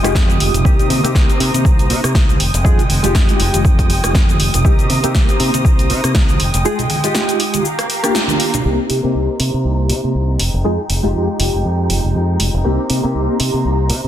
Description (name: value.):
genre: filtered disco house.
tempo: 120 BPM.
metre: 4/4.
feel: swing 56% on 16ths.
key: C minor.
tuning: A4 = 441 Hz.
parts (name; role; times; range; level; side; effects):
reed electric piano; accompaniment; 0.0-14.1 s; Ab3 to Ab4; -20 LUFS; equal; fast tremolo, phaser, sidechain pumping, low-pass filter.
muted chamber violin section; sustained chords; 0.0-14.1 s; Ab3 to Eb6; -24 LUFS; right 1 dB; vintage 12-bit sampler grit, sidechain pumping, low-pass filter.
modern bright fingered electric bass; bass; 0.0-14.1 s; F1 to C3; -18 LUFS; equal; sidechain pumping, low-pass filter.
punchy analog drum machine; drums; 0.0-14.0 s; hi-hat, rim click, shaker, snare drum; -21 LUFS; equal; overdrive, sidechain pumping on hats, sidechain pumping on perc.
tube shaker and congas; percussion; 0.0-8.6 s; none; -24 LUFS; right 2 dB; sidechain pumping on perc, low-pass filter on perc.
electronic kick drum; drums; 0.1-6.3 s; none; -13 LUFS; equal; overdrive.
room: light reverb.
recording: dense, heavily limited modern master.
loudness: -13 LUFS.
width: side -11 dB against mid.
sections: 0.0-8.7 A section; 8.7-14.1 B section.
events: break 6.7-8.7; band accent 8.2; filter sweep 8.7-14.1.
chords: 0.0 Fm9; 0.7 Cm7; 2.4 Fm9; 4.7 Cm7; 6.4 Fm9; 7.7 Gm7; 8.7 Cm7; 10.4 Fm9; 12.7 Cm7.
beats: 0.15 | 0.65 1.15 1.65 2.15 | 2.65 3.15 3.65 4.15 | 4.65 5.15 5.65 6.15 | 6.65 7.15 7.65 8.15 | 8.65 9.15 9.65 10.15 | 10.65 11.15 11.65 12.15 | 12.65 13.15 13.65.